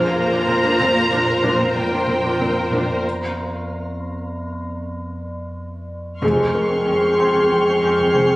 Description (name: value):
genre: cinematic, suspense film score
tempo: 94 BPM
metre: 5/4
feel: straight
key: unclear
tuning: A4 = 440 Hz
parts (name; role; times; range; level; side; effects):
- rich symphonic violin section; melody; 0.0-8.0 s; G5 to Bb5; -23 LUFS; equal; none
- rich symphonic violin section; second line; 0.0-8.0 s; Ab4 to C5; -23 LUFS; equal; none
- warm studio viola section; accompaniment; 0.0-8.0 s; Bb3 to F4; -24 LUFS; equal; none
- twinkling granular texture; sustained chords; 0.0-8.4 s; C4 to G5; -25 LUFS; equal; built-in reverb
- concert harp; riff; 0.0-8.4 s; F2 to Bb3; -28 LUFS; left 1 dB; none
- metallic inharmonic drone; drone; 0.0-8.4 s; F2; -29 LUFS; equal; chorus, built-in reverb
- felt-muted upright piano; texture; 0.0-8.4 s; Bb4 to C6; -29 LUFS; equal; none
- warm symphonic cello section; bass; 0.2-8.4 s; C2 to Bb2; -28 LUFS; right 1 dB; none
- warm symphonic double bass section; bass; 0.2-8.4 s; F1 to C2; -29 LUFS; right 1 dB; none
- mellow French horn section; sustained chords; 6.2-8.4 s; Ab3 to Ab4; -17 LUFS; equal; none
- taiko ensemble; drums; 6.2-8.4 s; none; -34 LUFS; equal; none
- warm symphonic violin section; texture; 6.2-8.4 s; C6 to F6; -25 LUFS; equal; none
room: moderate scoring stage reverb, RT60 1.6 s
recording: recorded on a phone in the room, studio reverb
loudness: -17 LUFS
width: side -18 dB against mid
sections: 0.0-6.2 A section; 6.2-8.4 B section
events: break 3.0-6.2; band accent 6.2-6.9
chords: 0.0 Bbadd9; 3.0 N.C.; 6.2 Fmadd9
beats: 0.48 1.12 1.76 2.40 | 3.03 3.67 4.31 4.95 5.59 | 6.23 6.86 7.50 8.14